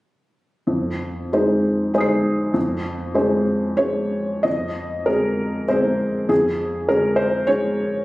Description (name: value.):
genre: neoclassical minimalist piano.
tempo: 96 BPM.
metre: 3/4.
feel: uneven beats, rubato.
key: F minor.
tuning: A4 = 440 Hz.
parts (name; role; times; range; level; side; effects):
felt-muted upright piano; solo; 0.7-8.0 s; F2 to C7; -18 LUFS; equal; none.
room: moderate concert hall reverb, RT60 2.0 s.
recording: recorded on a phone in the room, club reverb.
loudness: -18 LUFS.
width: side -18 dB against mid.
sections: 0.7-4.5 A section; 4.5-8.0 B section.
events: none.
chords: 0.7 Fm7; 2.6 Dbmaj7/F; 4.5 Fm7; 6.3 Db/F.